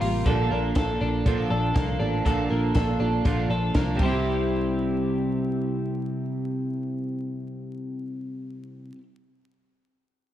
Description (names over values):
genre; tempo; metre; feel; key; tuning
jangly indie pop; 120 BPM; 4/4; straight; C mixolydian; A4 = 438 Hz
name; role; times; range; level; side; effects
fingerpicked twelve-string acoustic guitar; accompaniment; 0.0-9.1 s; Bb2 to A4; -29 LUFS; right 5 dB; none
twelve-string electric guitar; arpeggios; 0.0-9.0 s; Bb2 to A4; -28 LUFS; left 3 dB; lush chorus, diffuse ambient delay
vintage muted picked electric bass; bass; 0.0-8.9 s; A1 to C2; -29 LUFS; equal; none
compact cocktail drum kit; drums; 0.0-4.1 s; hi-hat, kick drum, ride cymbal, snare drum; -26 LUFS; equal; none
room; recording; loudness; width
moderate plate reverb, RT60 1.1 s, small room ambience; dreamy mix soaked in reverb, vinyl crackle; -23 LUFS; side -12 dB against mid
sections
0.0-4.2 A section; 4.2-8.2 B section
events
none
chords
0.3 Bbmaj7; 4.0 C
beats
| 0.26 0.76 1.26 1.75 | 2.25 2.75 3.25 3.75 | 4.25 4.74 5.24 5.74 | 6.24 6.74 7.24 7.74